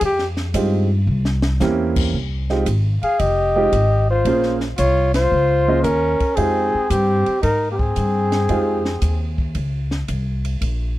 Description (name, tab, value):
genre	jazz, small-group swing and bop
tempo	113 BPM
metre	4/4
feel	swing 68% on 8ths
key	F minor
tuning	A4 = 439 Hz
part	trumpet with bucket mute	melody	0.0-9.4 s	G4 to F5	-19 LUFS	left 2 dB	none
part	upright bass	bass	0.0-11.0 s	F1 to Ab2	-20 LUFS	equal	none
part	compact cocktail drum kit	drums	0.0-10.8 s	crash cymbal, hi-hat, kick drum, ride cymbal, snare drum	-27 LUFS	equal	none
part	warm baby grand piano	accompaniment	0.5-8.8 s	Ab3 to Eb5	-22 LUFS	right 4 dB	none
part	warm trumpet	second line	3.0-9.4 s	Bb3 to Ab4	-25 LUFS	right 3 dB	none
room	small room ambience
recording	dry, close 1970s-style studio recording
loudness	-16 LUFS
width	side -16 dB against mid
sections	0.0-2.1 A section; 2.1-11.0 B section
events	muted trumpet solo 0.0-2.1; drum fill 1.1-1.6; band accent 5.0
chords	0.0 Fm9; 1.1 C7b9; 2.1 Fm9; 4.3 Bbm9; 6.4 Fm9